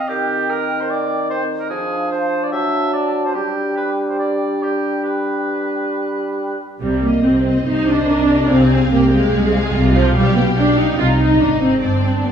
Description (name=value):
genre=classical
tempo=134-150 BPM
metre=4/4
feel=rubato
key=C minor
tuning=A4 = 440 Hz
part: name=clear clarinet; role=second line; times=0.0-6.6 s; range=C4 to D4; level=-26 LUFS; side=left 4 dB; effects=none
part: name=mellow hollow silver concert flute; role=second line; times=0.0-6.5 s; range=F5 to A5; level=-28 LUFS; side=left 1 dB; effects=none
part: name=warm cor anglais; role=second line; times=0.0-6.6 s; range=G4 to E5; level=-22 LUFS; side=right 3 dB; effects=none
part: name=mellow bassoon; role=accompaniment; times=0.1-6.6 s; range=Eb3 to G3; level=-23 LUFS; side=right 2 dB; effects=none
part: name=warm symphonic viola section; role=accompaniment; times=6.8-12.3 s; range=F3 to F4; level=-16 LUFS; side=right 1 dB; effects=none
part: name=clear symphonic cello section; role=bass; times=6.8-12.3 s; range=G2 to C3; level=-18 LUFS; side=equal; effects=none
part: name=warm symphonic double bass section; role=bass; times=6.8-12.3 s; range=G1 to C2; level=-20 LUFS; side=right 1 dB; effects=none
part: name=rich symphonic violin section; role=melody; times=7.0-12.3 s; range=D5 to F5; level=-28 LUFS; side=left 3 dB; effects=none
part: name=rich symphonic violin section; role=second line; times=7.7-12.3 s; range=D4 to C5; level=-23 LUFS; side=left 1 dB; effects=none
room=wet recital hall reverb, RT60 1.6 s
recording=heard from further back in the room, small room ambience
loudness=-15 LUFS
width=side -8 dB against mid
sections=0.0-6.8 A section; 6.8-12.3 B section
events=none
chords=0.1 Cm/Eb; 1.7 Ddim/F; 2.5 D/F#; 3.4 G; 6.8 Cm; 8.5 Abmaj13/C; 10.1 G7/B; 11.0 Cm